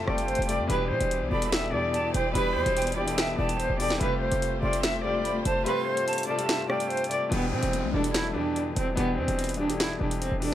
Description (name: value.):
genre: hip hop, drill.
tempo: 145 BPM.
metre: 4/4.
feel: half-time.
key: E phrygian.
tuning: A4 = 443 Hz.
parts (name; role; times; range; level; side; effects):
warm cello; melody; 0.0-10.5 s; B3 to E5; -28 LUFS; right 1 dB; low-pass filter.
jazz flute; second line; 0.0-7.3 s; G5 to C6; -34 LUFS; right 5 dB; digital delay.
bright grand piano; accompaniment; 0.0-10.5 s; B2 to A4; -31 LUFS; left 4 dB; low-pass filter.
warm studio string section; sustained chords; 0.0-7.3 s; B2 to D5; -36 LUFS; left 1 dB; none.
short 808-style bass; bass; 0.0-10.5 s; E1 to B2; -31 LUFS; equal; none.
drill drum kit; drums; 0.1-10.5 s; hi-hat, rim click, snare drum; -31 LUFS; equal; none.
downlifter; sound effects; 7.3-10.5 s; none; -38 LUFS; left 2 dB; none.
room: light reverb, small room ambience.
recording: none.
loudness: -24 LUFS.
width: side -12 dB against mid.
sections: 0.0-7.3 A section; 7.3-10.5 B section.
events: kick muted 5.7-7.3.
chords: 0.0 Fadd9; 0.7 Em7; 4.0 Fadd9; 7.3 Em7.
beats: 0.28 | 0.70 1.11 1.52 1.94 | 2.35 2.77 3.18 3.59 | 4.01 4.42 4.83 5.25 | 5.66 6.08 6.49 6.90 | 7.32 7.73 8.14 8.56 | 8.97 9.39 9.80 10.21.